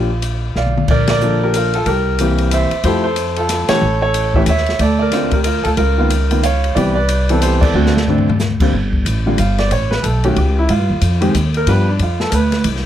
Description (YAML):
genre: jazz piano trio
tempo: 184 BPM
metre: 3/4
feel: swing 61% on 8ths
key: G minor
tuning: A4 = 436 Hz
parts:
  - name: warm concert grand piano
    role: melody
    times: 0.0-12.6 s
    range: D3 to F5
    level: -17 LUFS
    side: equal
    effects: none
  - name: upright bass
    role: bass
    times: 0.0-12.9 s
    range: G1 to Ab2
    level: -17 LUFS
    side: equal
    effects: none
  - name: open jazz drum kit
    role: drums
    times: 0.2-12.9 s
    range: crash cymbal, hi-hat, kick drum, ride cymbal, snare drum, toms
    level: -20 LUFS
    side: left 2 dB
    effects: none
room: little or no reverb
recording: close, detailed microphones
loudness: -13 LUFS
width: side -11 dB against mid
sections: 0.9-8.7 A section; 8.7-12.9 B section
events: drum fill 0.6-0.9, 7.7-8.4; band accent 1.0, 3.7, 7.6; grand piano solo 8.7-12.9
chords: 0.0 Gm7 (rootless); 0.9 Bbmaj7; 1.9 C7; 2.8 Fmaj9; 3.8 A; 4.8 Dm; 5.8 C#13; 6.8 Cmaj7; 7.7 D7(no3); 8.7 G7(no3); 9.7 A7; 10.7 N.C.; 11.7 G7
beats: 0.23 0.55 | 0.88 1.21 1.53 | 1.86 2.19 2.52 | 2.84 3.17 3.50 | 3.82 4.15 4.48 | 4.80 5.13 5.46 | 5.79 6.11 6.44 | 6.77 7.09 7.42 | 7.75 8.07 8.40 | 8.73 9.06 9.38 | 9.71 10.04 10.37 | 10.69 11.02 11.35 | 11.67 12.00 12.32 | 12.65